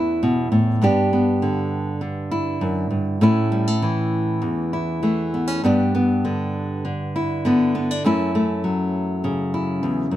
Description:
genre	folk, solo fingerstyle acoustic guitar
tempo	101 BPM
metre	4/4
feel	rubato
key	unclear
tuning	A4 = 441 Hz
part	nylon-string guitar	solo	0.0-10.2 s	E2 to G4	-19 LUFS	equal	none
room	light reverb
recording	dark, warm production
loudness	-19 LUFS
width	side -13 dB against mid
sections	0.0-10.2 A section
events	none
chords	0.0 A; 0.8 G; 3.2 A; 5.6 G; 8.0 F#m7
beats	0.24 | 0.84 1.43 2.02 2.62 | 3.22 3.81 4.42 5.03 | 5.64 6.25 6.85 7.45 | 8.05 8.64 9.23 9.82

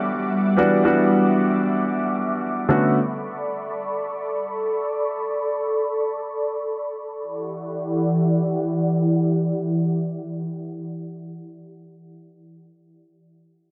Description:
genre	amapiano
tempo	free time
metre	none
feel	none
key	E dorian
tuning	A4 = 440 Hz
part	warm grand piano	accompaniment	0.0-3.0 s	D3 to F#4	-21 LUFS	equal	low-pass filter
part	ethereal airy pad	sustained chords	0.0-11.4 s	E3 to D6	-26 LUFS	equal	ensemble chorus, built-in reverb, low-pass filter
room	moderate lush hall reverb, RT60 2.5 s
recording	dark, warm production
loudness	-23 LUFS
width	mono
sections	0.0-7.2 A section; 7.2-11.5 B section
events	filter sweep 0.0-7.2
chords	0.0 Em9; 2.7 Bm9; 7.2 Em9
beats	free time

